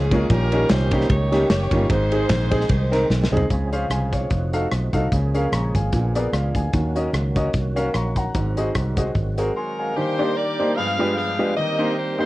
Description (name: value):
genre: uptempo gospel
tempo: 149 BPM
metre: 4/4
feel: swing 55% on 8ths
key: unclear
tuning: A4 = 442 Hz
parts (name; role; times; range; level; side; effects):
- clear saxophone section; melody; 0.0-3.1, 9.6-12.3 s; Db4 to F5; -25 LUFS; left 1 dB; none
- percussive tonewheel organ; sustained chords; 0.0-12.3 s; Eb3 to G5; -30 LUFS; right 2 dB; slow rotary speaker, overdrive, chorus vibrato, cassette tape
- fingered electric bass; bass; 0.0-9.5 s; F1 to Eb2; -22 LUFS; equal; none
- clear upright piano; accompaniment; 0.1-12.3 s; G2 to Db6; -23 LUFS; equal; cassette tape
- modern studio drum kit; drums; 0.1-9.5 s; hi-hat, kick drum, ride cymbal, rim click, snare drum, toms; -24 LUFS; equal; cassette tape
room: light reverb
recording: home recording on cassette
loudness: -18 LUFS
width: side -17 dB against mid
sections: 0.0-3.5 A section; 3.5-10.0 B section; 10.0-12.3 A section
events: drum fill 3.1-3.5; break 9.6-10.0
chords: 0.3 Eb7/Bb; 1.9 Ab; 3.5 Dbmaj7; 4.3 F7b9; 5.1 Bbm7/Db; 5.9 Bb7b9; 6.7 Ebm7; 8.3 Ab7; 10.0 Ebmaj7; 10.8 G7b9; 11.6 Cm7/Eb